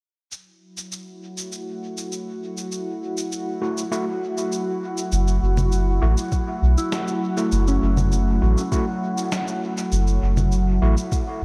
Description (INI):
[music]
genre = ambient dub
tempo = 100 BPM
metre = 4/4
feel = straight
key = F# minor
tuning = A4 = 441 Hz
[part]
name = warbly tape-like pad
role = sustained chords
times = 0.3-11.4 s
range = F#3 to F#5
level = -29 LUFS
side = equal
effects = chorus, built-in reverb, phaser
[part]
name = electronic shaker, congas and snare drum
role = drums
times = 0.3-11.2 s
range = none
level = -33 LUFS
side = equal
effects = dub echo
[part]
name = overdriven tine electric piano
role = stabs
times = 3.6-10.9 s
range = A3 to F#4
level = -32 LUFS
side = equal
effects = medium tremolo, dub echo
[part]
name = soft dub sub bass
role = bass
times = 5.1-11.4 s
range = F#1 to B1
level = -21 LUFS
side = equal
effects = none
[part]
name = electronic kick drum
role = drums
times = 6.3-11.2 s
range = none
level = -26 LUFS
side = equal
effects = none
[part]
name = soft synth bell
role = arpeggios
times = 6.8-11.4 s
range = C#4 to E4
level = -33 LUFS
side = equal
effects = chorus, low-pass filter, tape echo
[sound]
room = moderate huge ambient reverb, RT60 4.7 s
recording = dreamy mix soaked in reverb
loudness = -22 LUFS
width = mono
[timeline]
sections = 0.3-5.1 A section; 5.1-11.4 B section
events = kick drops out 3.9-5.1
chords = 0.3 F#m7